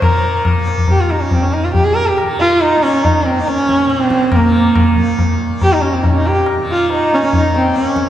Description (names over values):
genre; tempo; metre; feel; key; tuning
indian classical, Hindustani; 140 BPM; 5/4; straight; Bb raga bageshri; A4 = 441 Hz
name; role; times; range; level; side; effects
rich sarangi; melody; 0.0-8.1 s; Bb3 to Bb4; -13 LUFS; right 1 dB; none
tanpura; drone; 0.0-8.1 s; Bb2 to Bb3; -24 LUFS; left 1 dB; none
tabla; percussion; 0.0-8.1 s; none; -16 LUFS; left 2 dB; none
room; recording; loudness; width
wet concert hall reverb, RT60 2.2 s; heard from further back in the room; -11 LUFS; side -11 dB against mid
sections
0.0-8.1 A section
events
none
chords
none